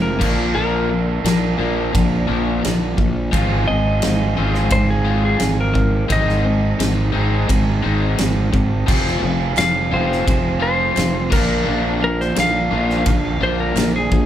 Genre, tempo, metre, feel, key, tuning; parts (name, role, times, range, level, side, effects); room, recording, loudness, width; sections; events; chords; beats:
classic rock; 86 BPM; 4/4; straight; F dorian; A4 = 440 Hz
clean lap steel guitar; melody; 0.0-14.3 s; Ab4 to F5; -23 LUFS; left 1 dB
crunchy overdriven guitar; riff; 0.0-14.3 s; Bb2 to F4; -23 LUFS; left 6 dB
raw garage guitar; riff; 0.0-14.1 s; F2 to Bb4; -25 LUFS; right 8 dB; overdrive
fuzz fingered electric bass; bass; 0.0-14.3 s; F1 to Bb1; -20 LUFS; right 1 dB; overdrive
big rock drum kit; drums; 0.2-14.3 s; crash cymbal, kick drum, ride cymbal, snare drum; -22 LUFS; equal
group handclap; percussion; 9.6-13.9 s; -36 LUFS; right 7 dB
light reverb; band playing live in one room; -15 LUFS; side -11 dB against mid
0.0-14.3 A section
electric slide guitar solo 0.0-14.3
0.2 Bb; 3.3 Fm7/Ab; 6.1 Ab; 8.9 Fm; 11.3 Bb
| 0.55 1.25 1.94 2.64 | 3.33 4.03 4.72 5.41 | 6.11 6.80 7.50 8.19 | 8.89 9.58 10.28 10.98 | 11.68 12.38 13.08 13.78